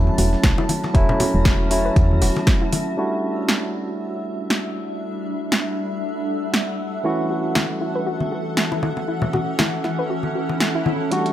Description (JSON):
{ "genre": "deep house", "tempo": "118 BPM", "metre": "4/4", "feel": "swing 56% on 16ths", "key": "unclear", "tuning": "A4 = 440 Hz", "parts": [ { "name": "soft round pluck", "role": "arpeggios", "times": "0.0-2.8, 7.0-11.2 s", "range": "E4 to B4", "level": "-29 LUFS", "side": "left 1 dB", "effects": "chorus, sidechain pumping, tape echo" }, { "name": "barky tine electric piano", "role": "stabs", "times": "0.0-11.3 s", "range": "E3 to F#4", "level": "-25 LUFS", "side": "equal", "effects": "overdrive, low-pass filter, tape echo" }, { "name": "woody FM bass", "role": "bass", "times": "0.0-2.3 s", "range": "E1 to E2", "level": "-20 LUFS", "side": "equal", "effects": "sidechain pumping" }, { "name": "granular cloud pad", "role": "texture", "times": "0.0-11.3 s", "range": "E3 to A5", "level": "-26 LUFS", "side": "equal", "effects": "built-in reverb, sidechain pumping" }, { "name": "congas", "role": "percussion", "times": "0.1-2.8, 7.6-11.0 s", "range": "none", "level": "-26 LUFS", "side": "left 2 dB", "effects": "none" }, { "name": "breakbeat sampler-style drum kit", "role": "drums", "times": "0.2-2.9, 11.1-11.3 s", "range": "hi-hat, snare drum", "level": "-35 LUFS", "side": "right 3 dB", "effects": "high-pass filter on hats, studio reverb, high-pass filter on snare" }, { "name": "deep house drum kit", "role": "drums", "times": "0.2-10.7 s", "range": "hi-hat, snare drum", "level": "-22 LUFS", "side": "right 1 dB", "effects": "overdrive, studio reverb" }, { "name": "electronic kick drum", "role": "drums", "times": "0.4-2.6 s", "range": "none", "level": "-18 LUFS", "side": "equal", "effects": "overdrive, studio reverb" }, { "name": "swell and riser", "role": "sound effects", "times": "10.3-11.3 s", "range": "none", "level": "-32 LUFS", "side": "left 1 dB", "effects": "none" } ], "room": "light reverb, digital ambience", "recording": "none", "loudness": "-19 LUFS", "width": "side -12 dB against mid", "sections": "0.0-3.0 A section; 3.0-11.1 B section", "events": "swell 10.3-11.1", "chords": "0.0 F#m7/E; 3.0 Em11; 7.0 F#m7/E", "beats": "0.44 | 0.95 1.45 1.96 2.47 | 2.98 3.49 4.00 4.50 | 5.01 5.52 6.03 6.54 | 7.05 7.56 8.06 8.57 | 9.08 9.59 10.10 10.61 | 11.12" }